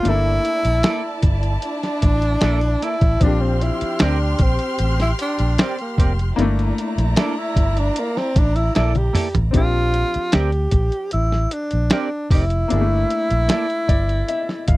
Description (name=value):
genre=lush 1970s-style soul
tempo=76 BPM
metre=4/4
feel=straight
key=G dorian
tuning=A4 = 440 Hz
part: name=breathy tenor saxophone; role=melody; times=0.0-14.8 s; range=Bb3 to G4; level=-22 LUFS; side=equal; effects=none
part: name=bright baby grand piano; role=accompaniment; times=0.0-14.8 s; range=F3 to F5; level=-26 LUFS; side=left 4 dB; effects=none
part: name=warm studio violin section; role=second line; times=0.1-9.5 s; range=E4 to F6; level=-29 LUFS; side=right 1 dB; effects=none
part: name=vintage muted fingered electric bass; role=bass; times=0.1-14.8 s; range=F1 to D2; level=-20 LUFS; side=equal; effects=none
part: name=lo-fi sampler-style drum kit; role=drums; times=0.1-14.8 s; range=hi-hat, kick drum, snare drum, toms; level=-18 LUFS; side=equal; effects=none
part: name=clean electric guitar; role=riff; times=0.8-13.7 s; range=Bb3 to D5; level=-25 LUFS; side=right 4 dB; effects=analog chorus
room=little or no reverb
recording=dry, close 1970s-style studio recording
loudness=-17 LUFS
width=side -18 dB against mid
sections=0.0-9.5 A section; 9.5-14.8 B section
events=tenor saxophone solo 0.0-9.5; drum fill 8.8-9.5; grand piano fill 13.5-14.8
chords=0.1 Gm69; 3.2 Bb69; 6.4 Gm69; 9.5 Bb69; 12.7 Gm69